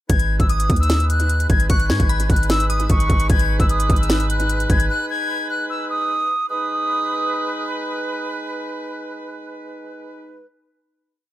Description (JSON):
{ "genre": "hip hop, trap", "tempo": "150 BPM", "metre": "4/4", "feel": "half-time", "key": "G# minor", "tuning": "A4 = 440 Hz", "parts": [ { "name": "silver concert flute", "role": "melody", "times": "0.1-7.7 s", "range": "C#6 to G#6", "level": "-22 LUFS", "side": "equal", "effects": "analog delay" }, { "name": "bright woodwind section", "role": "sustained chords", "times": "0.1-10.5 s", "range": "G#3 to B4", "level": "-28 LUFS", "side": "right 1 dB", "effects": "none" }, { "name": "warm 808-style bass", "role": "bass", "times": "0.1-4.9 s", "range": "G#1 to G#2", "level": "-19 LUFS", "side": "equal", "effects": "none" }, { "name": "trap drum kit", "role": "drums", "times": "0.1-4.9 s", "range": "hi-hat, kick drum, snare drum", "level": "-19 LUFS", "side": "equal", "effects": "none" }, { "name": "glassy synth bell", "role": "second line", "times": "0.5-3.3 s", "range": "B5 to D#6", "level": "-32 LUFS", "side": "left 3 dB", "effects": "chorus, phaser, analog delay" } ], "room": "light reverb", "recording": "echo-heavy mix", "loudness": "-17 LUFS", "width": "side -14 dB against mid", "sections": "0.1-6.5 hook; 6.5-9.7 final chord", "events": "none", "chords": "0.1 G#m" }